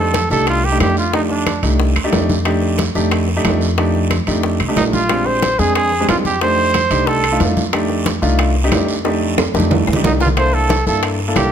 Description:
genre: Afro-Cuban jazz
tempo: 182 BPM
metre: 4/4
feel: straight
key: F mixolydian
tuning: A4 = 439 Hz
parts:
  - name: clear trumpet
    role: melody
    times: 0.0-1.6, 4.8-7.4, 10.1-11.5 s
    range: D4 to C5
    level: -17 LUFS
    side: right 2 dB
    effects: none
  - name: warm concert grand piano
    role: accompaniment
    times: 0.0-11.5 s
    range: Ab3 to A4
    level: -19 LUFS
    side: right 1 dB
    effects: none
  - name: upright bass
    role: bass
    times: 0.0-11.5 s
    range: Bb1 to G2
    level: -19 LUFS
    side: left 1 dB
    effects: none
  - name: bongos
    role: percussion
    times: 0.1-11.5 s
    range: none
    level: -26 LUFS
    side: left 7 dB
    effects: none
  - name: congas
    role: percussion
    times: 0.1-11.5 s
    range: none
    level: -24 LUFS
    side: left 1 dB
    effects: none
  - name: guiro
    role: percussion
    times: 0.1-11.5 s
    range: none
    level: -28 LUFS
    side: right 6 dB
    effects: none
  - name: timbales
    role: percussion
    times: 0.1-11.5 s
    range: none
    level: -24 LUFS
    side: right 7 dB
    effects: none
  - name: claves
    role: percussion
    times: 0.5-11.5 s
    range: none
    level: -31 LUFS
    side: left 7 dB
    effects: none
room: light reverb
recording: none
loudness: -13 LUFS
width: side -8 dB against mid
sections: 0.0-11.5 A section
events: drum fill 9.1-10.4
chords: 0.0 F13; 5.1 Bb13; 6.4 F13; 10.4 C13

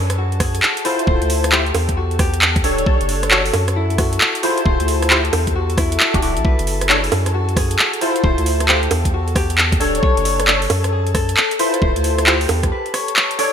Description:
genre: UK garage, two-step garage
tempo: 134 BPM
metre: 4/4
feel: swing 64% on 16ths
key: B minor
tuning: A4 = 440 Hz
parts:
  - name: concert harp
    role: melody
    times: 0.0-13.5 s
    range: E4 to D5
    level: -24 LUFS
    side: left 4 dB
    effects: digital delay
  - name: ethereal airy pad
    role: sustained chords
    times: 0.0-13.5 s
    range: A4 to A5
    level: -28 LUFS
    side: equal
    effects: ensemble chorus, built-in reverb, sidechain pumping
  - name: soft dub sub bass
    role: bass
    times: 0.0-12.7 s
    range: D1 to F#2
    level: -20 LUFS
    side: equal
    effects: none
  - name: garage drum kit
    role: drums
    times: 0.1-13.5 s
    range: bongos, handclaps, hi-hat, rim click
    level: -18 LUFS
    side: right 1 dB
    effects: overdrive, studio ambience
  - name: electronic kick drum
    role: drums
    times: 0.4-12.7 s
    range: none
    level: -19 LUFS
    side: equal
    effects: overdrive, studio ambience
  - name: percussive organ stab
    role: stabs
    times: 0.8-13.5 s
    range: D4 to C#5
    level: -21 LUFS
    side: equal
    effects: ensemble chorus
room: moderate lush hall reverb, RT60 2.1 s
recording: bright 1980s-style digital production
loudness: -14 LUFS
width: side -8 dB against mid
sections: 0.0-13.5 A section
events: break 12.7-13.5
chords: 0.0 F#m7; 1.1 Dm9; 1.7 Dmaj9; 2.9 Bm9; 3.5 F#m7; 4.7 Dm9; 5.3 Em9; 6.4 Bm9; 7.1 F#m7; 8.2 Dm9; 8.9 Dmaj9; 10.0 Bm9; 10.7 F#m7; 11.8 Dm9; 12.5 Bm11/E

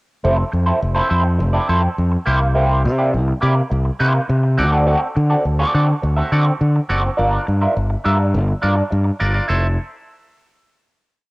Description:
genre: disco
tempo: 104 BPM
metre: 4/4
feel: straight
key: F major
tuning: A4 = 442 Hz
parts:
  - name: semi-hollow electric guitar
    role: accompaniment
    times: 0.2-9.7 s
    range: Bb3 to E5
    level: -19 LUFS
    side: right 1 dB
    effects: wah, spring reverb, cassette tape
  - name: overdriven fingered electric bass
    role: bass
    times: 0.2-9.8 s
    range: F1 to D3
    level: -16 LUFS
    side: equal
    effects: none
room: light reverb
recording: home recording on cassette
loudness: -15 LUFS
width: side -24 dB against mid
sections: 0.2-9.5 verse; 9.5-11.3 final chord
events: none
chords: 0.2 Fmaj7; 2.3 C7; 4.6 D7; 7.2 Gm7; 9.5 Fmaj7

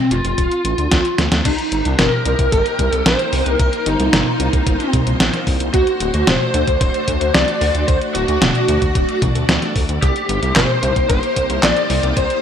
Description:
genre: synthwave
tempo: 112 BPM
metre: 4/4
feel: straight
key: unclear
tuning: A4 = 444 Hz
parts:
  - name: lead guitar through a small cranked amp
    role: melody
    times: 0.0-12.4 s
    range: C4 to D5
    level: -20 LUFS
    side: left 1 dB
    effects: overdrive, ensemble chorus, digital delay
  - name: wide detuned saw bass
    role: bass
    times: 0.1-12.3 s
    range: D1 to D2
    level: -20 LUFS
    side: equal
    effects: chorus
  - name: clean 12-bit digital drum machine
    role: drums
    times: 0.1-12.4 s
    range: crash cymbal, handclaps, hi-hat, snare drum, toms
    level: -18 LUFS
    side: equal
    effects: gated reverb
  - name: electronic kick drum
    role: drums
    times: 0.4-12.3 s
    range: none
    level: -19 LUFS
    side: equal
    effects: none
  - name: string machine, full ensemble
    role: sustained chords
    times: 1.4-12.4 s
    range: A3 to D5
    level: -24 LUFS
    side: equal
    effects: ensemble chorus
  - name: FM electric piano with soft pad layer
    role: second line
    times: 1.5-12.4 s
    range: Eb4 to D5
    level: -27 LUFS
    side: left 1 dB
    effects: none
room: moderate plate reverb, RT60 2.6 s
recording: bright 1980s-style digital production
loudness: -14 LUFS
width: side -8 dB against mid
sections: 0.0-1.5 A section; 1.5-12.4 B section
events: drum fill 1.2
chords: 0.4 Dm; 1.5 Cm7; 5.7 D7; 10.0 Cm7

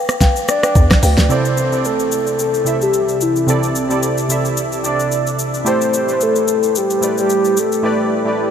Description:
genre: amapiano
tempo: 110 BPM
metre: 4/4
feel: swing 55% on 16ths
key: C major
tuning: A4 = 440 Hz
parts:
  - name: folk marimba with soft mallets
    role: stabs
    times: 0.0-1.3 s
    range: B4 to G5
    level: -25 LUFS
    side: left 2 dB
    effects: diffuse ambient delay
  - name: smooth R&B drum kit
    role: drums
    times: 0.1-7.8 s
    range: hi-hat, kick drum, rim click, shaker, snare drum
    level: -18 LUFS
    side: equal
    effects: none
  - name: soft octave-layered synth lead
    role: melody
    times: 0.5-8.1 s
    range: E4 to D5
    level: -17 LUFS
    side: equal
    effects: chorus, phaser, diffuse ambient delay
  - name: hollow log drum bass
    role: bass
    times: 0.8-1.3 s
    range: D2 to E2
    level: -14 LUFS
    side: equal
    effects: none
  - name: warm analog keys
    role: accompaniment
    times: 1.3-8.5 s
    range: C3 to E5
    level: -18 LUFS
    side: right 1 dB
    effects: chorus
room: wet huge ambient reverb, RT60 7.3 s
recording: dreamy mix soaked in reverb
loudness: -14 LUFS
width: side -8 dB against mid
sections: 0.0-1.3 A section; 1.3-8.5 B section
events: drop 0.0-1.3; hi-hats muted 7.8-8.5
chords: 0.0 G7; 1.3 C69; 5.7 Am9

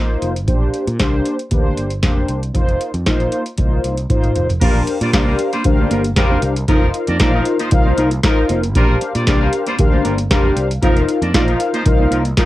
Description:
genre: early-eighties boogie funk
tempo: 116 BPM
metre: 4/4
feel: straight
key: Bb major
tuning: A4 = 440 Hz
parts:
  - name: mellow synth brass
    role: accompaniment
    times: 0.0-12.5 s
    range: Bb3 to F5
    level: -19 LUFS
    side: left 2 dB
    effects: chorus, cassette tape
  - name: fretless electric bass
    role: bass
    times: 0.2-12.3 s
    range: F1 to Bb2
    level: -21 LUFS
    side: equal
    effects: none
  - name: booming analog drum machine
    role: drums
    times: 0.2-12.5 s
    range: crash cymbal, hi-hat, kick drum, snare drum, toms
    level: -16 LUFS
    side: equal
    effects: cassette tape
  - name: mellow horn section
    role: second line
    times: 4.6-12.5 s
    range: F3 to D5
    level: -24 LUFS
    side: equal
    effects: cassette tape
  - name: mellow electric guitar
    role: riff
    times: 4.6-12.4 s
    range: Bb3 to D5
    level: -22 LUFS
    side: right 2 dB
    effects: lush chorus, cassette tape
room: light reverb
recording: home recording on cassette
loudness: -14 LUFS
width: side -16 dB against mid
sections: 0.0-4.6 A section; 4.6-12.5 B section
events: drum fill 3.6-4.6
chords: 0.5 Bb69; 2.5 F7sus4; 4.6 Bb69; 6.7 F7sus4; 8.8 Bb69; 10.8 F7sus4

